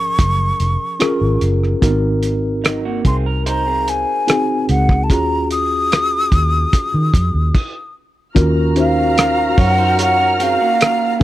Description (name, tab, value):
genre	lush 1970s-style soul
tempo	73 BPM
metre	4/4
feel	straight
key	Eb dorian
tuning	A4 = 440 Hz
part	breathy concert flute	melody	0.0-11.2 s	F5 to Eb6	-18 LUFS	equal	none
part	mellow tine electric piano	accompaniment	0.0-11.2 s	F3 to C5	-20 LUFS	left 1 dB	medium stereo tremolo
part	vintage muted fingered electric bass	bass	0.0-10.6 s	F1 to Eb3	-18 LUFS	equal	none
part	cloth-damped thuddy drum kit	drums	0.2-11.2 s	crash cymbal, hi-hat, kick drum, rim click	-15 LUFS	equal	none
part	electric guitar through a small old amp	riff	2.6-11.2 s	Gb3 to Db5	-24 LUFS	right 8 dB	spring reverb
part	muted studio string section	second line	8.4-11.2 s	Gb4 to F6	-22 LUFS	right 1 dB	none
room	little or no reverb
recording	dry, close 1970s-style studio recording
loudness	-13 LUFS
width	side -14 dB against mid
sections	0.0-8.4 A section; 8.4-11.2 B section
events	stop 7.5-8.4; flute solo 8.4-11.2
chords	0.0 Gbmaj9; 1.8 Ab7; 5.1 Ebm11; 8.4 Ebm9